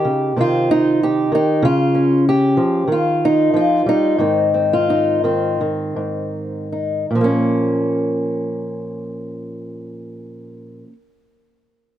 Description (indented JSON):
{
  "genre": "folk, solo fingerstyle acoustic guitar",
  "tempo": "77-96 BPM",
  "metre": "4/4",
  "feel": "straight",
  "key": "Bb dorian",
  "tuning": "A4 = 436 Hz",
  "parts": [
    { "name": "fingerpicked old ladder-braced acoustic guitar", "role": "solo", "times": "0.0-10.9 s", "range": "Ab2 to G4", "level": "-16 LUFS", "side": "equal", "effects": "none" }
  ],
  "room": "small room ambience",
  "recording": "dry, close 1970s-style studio recording",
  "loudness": "-15 LUFS",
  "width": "side -11 dB against mid",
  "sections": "0.0-7.1 A section; 7.1-10.2 B section",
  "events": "slowing down 1.6-7.1",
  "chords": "0.4 Cm; 1.6 Db; 2.9 Eb; 4.2 Ab; 7.1 Bbm"
}